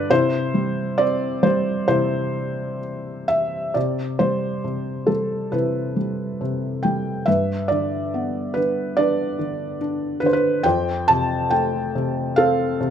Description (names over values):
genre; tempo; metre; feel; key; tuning
classical, lyrical solo piano; 63-74 BPM; 4/4; rubato; C major; A4 = 441 Hz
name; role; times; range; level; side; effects
felt-muted upright piano; solo; 0.0-12.9 s; F2 to A5; -19 LUFS; equal; none
room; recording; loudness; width
light reverb; close, detailed microphones; -19 LUFS; side -8 dB against mid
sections
0.0-3.8 A section; 3.8-12.9 B section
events
none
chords
0.1 C; 7.3 G; 10.6 Fadd9